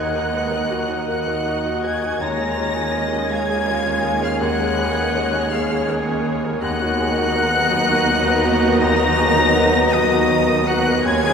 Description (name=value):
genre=cinematic, emotional film score for orchestra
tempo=54 BPM (dotted quarters)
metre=6/8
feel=rubato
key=unclear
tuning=A4 = 440 Hz
part: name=rich studio violin section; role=melody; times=0.0-11.3 s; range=D#6 to Bb6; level=-25 LUFS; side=left 4 dB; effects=none
part: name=bright concert flute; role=second line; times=0.0-11.3 s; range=D#5 to A#5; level=-25 LUFS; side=left 1 dB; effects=none
part: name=clear oboe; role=second line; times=0.0-11.3 s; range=Gb5 to A#5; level=-29 LUFS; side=equal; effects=none
part: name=mellow clarinet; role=second line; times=0.0-11.3 s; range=B4 to Eb5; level=-27 LUFS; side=equal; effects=none
part: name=rich studio violin section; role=second line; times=0.0-11.3 s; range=Ab4 to F5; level=-27 LUFS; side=left 3 dB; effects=none
part: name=felt-muted upright piano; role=accompaniment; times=0.0-11.3 s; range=Eb2 to Cb5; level=-24 LUFS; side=equal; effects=none
part: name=warm studio viola section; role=accompaniment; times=0.0-11.3 s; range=Gb3 to Ab4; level=-27 LUFS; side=right 2 dB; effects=none
part: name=mellow French horn section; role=sustained chords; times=0.0-11.3 s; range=Eb3 to Eb4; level=-27 LUFS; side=left 3 dB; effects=none
part: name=rich studio cello section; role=bass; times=0.0-11.3 s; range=Eb2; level=-26 LUFS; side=right 3 dB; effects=none
part: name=rich studio double bass section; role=bass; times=0.0-11.3 s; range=Eb2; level=-28 LUFS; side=right 4 dB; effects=none
room=wet cathedral reverb, RT60 5.9 s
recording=recorded in a church or concert hall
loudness=-16 LUFS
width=side -6 dB against mid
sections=0.0-11.3 A section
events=none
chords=0.0 Ebm; 2.2 Bbm7/Eb; 6.6 Bmaj7/D#